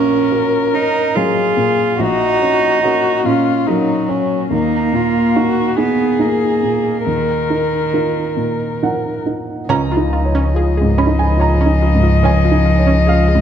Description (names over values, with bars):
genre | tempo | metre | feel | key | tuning
neoclassical piano and strings | 71 BPM | 3/4 | rubato | unclear | A4 = 440 Hz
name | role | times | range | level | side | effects
dark violin | melody | 0.0-13.4 s | Db4 to Eb5 | -19 LUFS | left 4 dB | slapback echo
rich cello | second line | 0.0-13.4 s | Eb3 to F4 | -18 LUFS | right 4 dB | none
warm upright piano | accompaniment | 0.0-13.4 s | Bb1 to Cb6 | -19 LUFS | right 1 dB | none
analog pluck | arpeggios | 9.7-13.4 s | Db4 to Db5 | -22 LUFS | equal | chorus, slapback echo
warm double bass | bass | 9.7-13.4 s | Db2 | -15 LUFS | equal | none
room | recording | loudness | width
moderate concert hall reverb, RT60 1.9 s | dark, warm production | -13 LUFS | side -8 dB against mid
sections
0.0-9.7 A section; 9.7-13.4 A section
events
none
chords
0.0 Gb/Bb; 4.5 Ebsus2; 9.7 Dbadd9